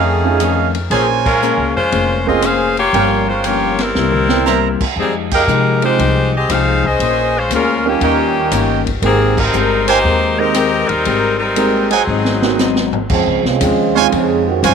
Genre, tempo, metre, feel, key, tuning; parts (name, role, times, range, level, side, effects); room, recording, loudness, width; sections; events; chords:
jazz, big band swing; 118 BPM; 4/4; swing 68% on 8ths; Ab major; A4 = 440 Hz
edgy saxophone section; melody; 0.0-12.9 s; Eb3 to F5; -16 LUFS; left 2 dB; tape echo
vintage hollow-body jazz guitar; accompaniment; 0.0-14.7 s; F2 to C5; -20 LUFS; left 11 dB
clear trumpet section; stabs; 0.0-14.7 s; G#4 to Bb5; -18 LUFS; right 11 dB
upright bass; bass; 0.0-14.7 s; F1 to C3; -20 LUFS; equal
clear grand piano; accompaniment; 0.2-14.6 s; F3 to Bb4; -19 LUFS; right 12 dB
open jazz drum kit; drums; 0.4-14.7 s; crash cymbal, hi-hat, kick drum, ride cymbal, rim click, snare drum, toms; -22 LUFS; right 1 dB
muted trombone section; second line; 13.1-14.7 s; Db3 to Ab4; -16 LUFS; right 11 dB
moderate spring reverb, RT60 1.3 s, small room ambience; 1960s-style stereo with parts hard left and right; -12 LUFS; side -6 dB against mid
0.0-13.1 A section; 13.1-14.7 B section
band accent 1.2, 5.2, 9.3; drum fill 4.0-4.5, 12.1-13.1; trombone section solo 13.1-14.7
0.0 F7alt; 0.9 Bbm9; 2.9 Gm7b5; 4.0 C7; 5.0 Fm9; 7.0 Bbm9; 8.0 Eb7; 9.0 Abmaj9; 12.1 Ab7; 13.1 Dbmaj7